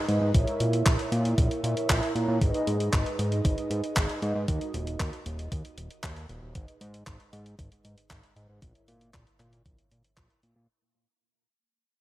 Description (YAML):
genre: italo disco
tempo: 116 BPM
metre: 4/4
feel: straight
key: G# minor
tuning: A4 = 440 Hz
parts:
  - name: mellow synth brass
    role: stabs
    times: 0.0-10.7 s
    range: D#4 to A#5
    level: -31 LUFS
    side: right 2 dB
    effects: chorus, shimmer reverb, digital delay
  - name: fat analog bass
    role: bass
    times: 0.1-10.7 s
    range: D#1 to A#2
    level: -30 LUFS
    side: equal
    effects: digital delay
  - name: clean 12-bit digital drum machine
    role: drums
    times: 0.1-10.5 s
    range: handclaps, hi-hat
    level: -33 LUFS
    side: equal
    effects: gated reverb
  - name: electronic kick drum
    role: drums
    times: 0.3-10.3 s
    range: none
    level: -26 LUFS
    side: equal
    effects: none
room: light reverb, digital ambience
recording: none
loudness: -25 LUFS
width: side -16 dB against mid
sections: 0.0-10.7 A section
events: fade-out 0.0-10.7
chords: 0.3 A#dim; 2.4 G#m; 4.5 D#m; 6.6 G#m; 8.6 A#dim